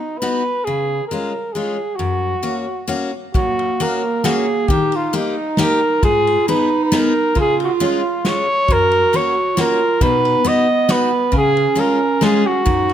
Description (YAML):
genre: alpine folk, alpine dance band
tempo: 135 BPM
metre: 3/4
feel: swing 53% on 8ths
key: F# major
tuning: A4 = 440 Hz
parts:
  - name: mellow flugelhorn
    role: melody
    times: 0.0-12.9 s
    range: D#4 to D#5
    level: -17 LUFS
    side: right 1 dB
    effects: none
  - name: picked steel-string acoustic guitar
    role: accompaniment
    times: 0.2-12.9 s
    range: F#2 to G#4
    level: -22 LUFS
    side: left 4 dB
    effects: none
  - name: dark clarinet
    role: second line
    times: 3.3-12.9 s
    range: A#3 to F#4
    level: -21 LUFS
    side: right 5 dB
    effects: none
  - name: unplugged drum kit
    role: drums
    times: 3.3-12.9 s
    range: kick drum, ride cymbal, snare drum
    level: -22 LUFS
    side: equal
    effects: none
room: light reverb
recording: close, detailed microphones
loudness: -15 LUFS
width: side -10 dB against mid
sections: 0.0-3.3 A section; 3.3-12.9 A section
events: none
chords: 0.0 B; 0.6 C#; 2.0 F#; 4.7 D#; 6.0 G#m; 7.3 C#; 8.7 F#; 10.0 B; 11.3 C#